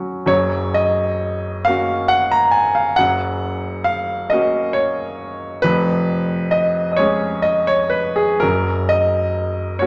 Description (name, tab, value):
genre	classical, romantic nocturne for solo piano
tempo	39-46 BPM (dotted quarters)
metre	12/8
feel	rubato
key	F# major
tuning	A4 = 440 Hz
part	clear concert grand piano	solo	0.0-9.9 s	E#1 to A#5	-18 LUFS	equal	none
room	wet recital hall reverb, RT60 1.5 s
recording	none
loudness	-18 LUFS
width	mono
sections	0.3-9.9 A section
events	none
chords	0.3 F#; 5.6 C#7/E#; 8.4 F#